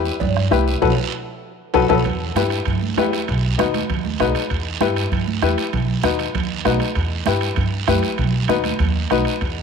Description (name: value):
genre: latin, cumbia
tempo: 196 BPM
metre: 4/4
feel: straight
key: E harmonic minor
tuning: A4 = 440 Hz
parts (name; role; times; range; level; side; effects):
- warm upright piano; accompaniment; 0.0-9.3 s; D#4 to B4; -21 LUFS; left 10 dB; none
- upright bass; bass; 0.0-9.6 s; B1 to G2; -22 LUFS; right 1 dB; none
- guiro; percussion; 0.1-9.6 s; none; -31 LUFS; right 12 dB; none
- bombo; percussion; 0.2-9.6 s; none; -28 LUFS; right 1 dB; none
- congas; percussion; 0.2-9.6 s; none; -26 LUFS; right 12 dB; none
- cowbell and timbales; percussion; 0.2-9.6 s; none; -29 LUFS; right 12 dB; none
room: moderate echo chamber reverb, RT60 2.4 s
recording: 1960s-style stereo with parts hard left and right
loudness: -17 LUFS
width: side -6 dB against mid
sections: 0.0-2.1 A section; 2.1-9.6 B section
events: band accent 0.8-2.1; drum fill 1.3-2.1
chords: 0.0 Em; 0.8 B5; 2.1 Em; 3.3 B; 4.5 Em; 5.7 B; 7.0 Em; 8.2 B